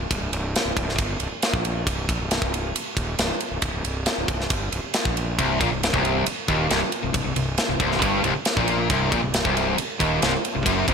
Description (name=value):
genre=hard rock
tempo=136 BPM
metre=4/4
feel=straight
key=C minor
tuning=A4 = 439 Hz
part: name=fuzz fingered electric bass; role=bass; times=0.0-10.9 s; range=C1 to Bb1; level=-28 LUFS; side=equal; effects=overdrive
part: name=tight metal drum kit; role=drums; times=0.1-10.9 s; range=kick drum, ride cymbal, snare drum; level=-24 LUFS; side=right 1 dB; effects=none
part: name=crunchy overdriven guitar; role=riff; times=5.4-10.9 s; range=C2 to Bb2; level=-26 LUFS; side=right 11 dB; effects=none
part: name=distorted electric guitar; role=riff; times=5.4-10.9 s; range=C2 to Bb2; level=-24 LUFS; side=left 12 dB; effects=overdrive
room=small room ambience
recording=none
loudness=-21 LUFS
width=side -6 dB against mid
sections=0.0-10.9 A section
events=none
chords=0.0 Cm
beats=| 0.11 0.55 0.99 1.43 | 1.87 2.31 2.75 3.19 | 3.63 4.07 4.51 4.95 | 5.39 5.83 6.27 6.71 | 7.15 7.59 8.03 8.47 | 8.91 9.35 9.79 10.23 | 10.67